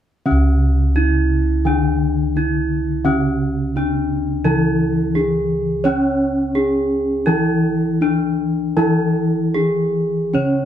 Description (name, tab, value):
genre	gamelan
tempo	85 BPM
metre	4/4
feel	uneven beats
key	unclear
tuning	A4 = 437 Hz
part	gamelan-type bronze metallophone	melody	0.3-10.7 s	C#4 to C#5	-20 LUFS	right 1 dB	none
part	gamelan-type bronze metallophone	accompaniment	0.3-10.7 s	C#3 to C#4	-20 LUFS	left 1 dB	none
part	gamelan-type bossed gongs	bass	0.3-10.7 s	C#2 to C#5	-21 LUFS	equal	none
room	light reverb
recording	band playing live in one room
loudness	-16 LUFS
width	side -10 dB against mid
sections	0.3-10.7 A section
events	none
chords	none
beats	| 0.26 0.96 1.66 2.35 | 3.05 3.75 4.45 5.14 | 5.84 6.55 7.27 8.01 | 8.77 9.54 10.34